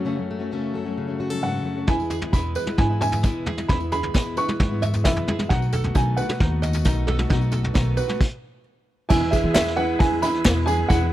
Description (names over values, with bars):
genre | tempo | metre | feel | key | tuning
indie folk with a building arrangement | 133 BPM | 4/4 | straight | E major | A4 = 441 Hz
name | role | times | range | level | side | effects
fingerpicked plugged-in steel-string acoustic guitar | accompaniment | 0.0-1.9 s | F#2 to A4 | -28 LUFS | left 1 dB | none
picked plugged-in steel-string acoustic guitar | accompaniment | 0.0-11.1 s | E2 to F#4 | -29 LUFS | left 3 dB | none
dark upright piano | melody | 1.4-11.1 s | E5 to C#6 | -27 LUFS | right 1 dB | none
open-back banjo | arpeggios | 1.9-11.1 s | D#4 to E5 | -29 LUFS | right 6 dB | none
upright bass | bass | 1.9-11.1 s | B1 to E3 | -25 LUFS | equal | none
vintage brush drum kit | drums | 1.9-11.0 s | crash cymbal, hi-hat, kick drum, snare drum, toms | -21 LUFS | equal | none
tambourine | percussion | 1.9-11.0 s | none | -40 LUFS | left 11 dB | none
bright tonewheel organ | sustained chords | 9.1-11.1 s | E3 to B4 | -31 LUFS | equal | slow rotary speaker
group handclap | percussion | 9.6-10.6 s | none | -31 LUFS | left 5 dB | none
room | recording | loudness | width
small room ambience | dry, close 1970s-style studio recording | -20 LUFS | side -14 dB against mid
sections
0.0-9.1 A section; 9.1-11.1 B section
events
stop 8.2-9.1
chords
0.0 F#m; 1.9 E; 5.5 B7; 9.1 E